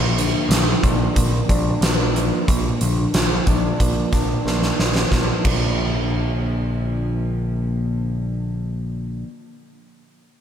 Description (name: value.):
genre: quiet-loud alternative rock.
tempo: 91 BPM.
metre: 4/4.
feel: straight.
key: Bb major.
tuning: A4 = 444 Hz.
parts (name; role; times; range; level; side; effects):
electric guitar through a small old amp; arpeggios; 0.0-9.3 s; Bb2 to D4; -24 LUFS; equal; lush chorus, tape echo.
growling picked electric bass; bass; 0.0-9.2 s; Bb1; -23 LUFS; equal; overdrive.
huge arena drum kit; drums; 0.2-5.6 s; crash cymbal, hi-hat, kick drum, snare drum; -20 LUFS; equal; none.
room: moderate concert hall reverb, RT60 2.2 s.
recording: big arena sound.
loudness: -18 LUFS.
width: side -9 dB against mid.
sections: 0.0-5.1 A section; 5.1-7.8 B section.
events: drum fill 4.5-5.1.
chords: 0.0 Bb.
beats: 0.50 1.16 1.82 | 2.48 3.14 3.80 4.46 | 5.12 5.78 6.45 7.11.